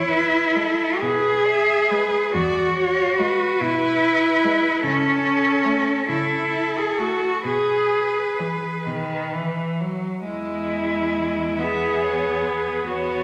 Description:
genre	classical, lyrical piece for cello ensemble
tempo	42-50 BPM (dotted quarters)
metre	6/8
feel	rubato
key	E major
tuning	A4 = 440 Hz
part	clear cello	melody	0.0-13.2 s	A4 to E5	-30 LUFS	equal	none
part	rich cello	second line	0.0-13.2 s	C#4 to G#4	-22 LUFS	equal	none
part	rich cello	bass	0.0-13.2 s	E2 to C#3	-35 LUFS	equal	none
part	rich cello	accompaniment	0.6-13.2 s	D#3 to B3	-31 LUFS	equal	none
room	wet recital hall reverb, RT60 1.6 s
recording	none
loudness	-21 LUFS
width	mono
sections	0.0-13.2 A section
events	none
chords	0.0 E; 4.8 A/C#; 7.4 E/B; 8.8 B; 10.2 E

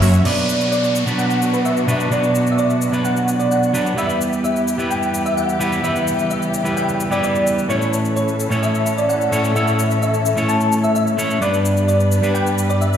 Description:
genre	EDM, festival progressive house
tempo	129 BPM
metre	4/4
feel	straight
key	B minor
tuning	A4 = 439 Hz
part	thumb-piano-like synth pluck	melody	0.0-13.0 s	B4 to A5	-21 LUFS	equal	ensemble chorus, cassette tape, tape echo
part	muted studio string section	sustained chords	0.0-13.0 s	E2 to B4	-25 LUFS	left 1 dB	vintage 12-bit sampler grit
part	big-room dance drum kit	drums	0.0-13.0 s	crash cymbal, hi-hat, shaker	-31 LUFS	left 2 dB	overdrive
part	clean electric guitar	accompaniment	0.2-13.0 s	G2 to C#5	-19 LUFS	right 1 dB	none
part	downlifter	sound effects	0.3-4.0 s	none	-28 LUFS	left 1 dB	none
room	wet digital room reverb, RT60 1.1 s, digital ambience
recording	played on a big sound system in a bare room, large studio reverb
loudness	-16 LUFS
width	side -9 dB against mid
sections	0.3-13.0 A section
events	none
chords	0.3 Bm; 4.0 Em; 7.7 A; 11.4 G

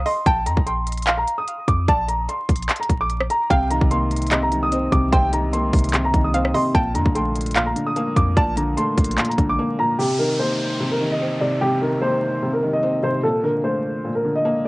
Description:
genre	hip hop, trap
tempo	148 BPM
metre	4/4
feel	half-time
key	unclear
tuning	A4 = 440 Hz
part	dark concert grand piano	melody	0.0-14.7 s	G4 to Eb6	-22 LUFS	equal	cassette tape, plate reverb, tape echo
part	hollow square pluck	second line	0.0-9.9 s	C5 to G5	-28 LUFS	right 1 dB	chorus, cassette tape, plate reverb, tape echo
part	warm 808-style bass	bass	0.0-9.6 s	Bb1 to F2	-24 LUFS	equal	none
part	trap drum kit	drums	0.1-9.5 s	handclaps, hi-hat, kick drum, rim click	-20 LUFS	equal	none
part	felt-muted upright piano	accompaniment	3.5-14.7 s	Bb2 to C4	-23 LUFS	left 1 dB	cassette tape, plate reverb
part	downlifter	sound effects	10.0-13.2 s	none	-32 LUFS	equal	none
room	moderate booth ambience, RT60 0.2 s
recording	home recording on cassette, vinyl crackle, nothing above 10.4 kHz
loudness	-18 LUFS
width	side -22 dB against mid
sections	0.0-10.0 A section; 10.0-14.7 B section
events	drums muted 9.6-10.0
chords	0.3 Bb; 3.5 Cm7; 6.7 Bbmaj7; 10.0 Cm7; 13.2 Bbmaj7

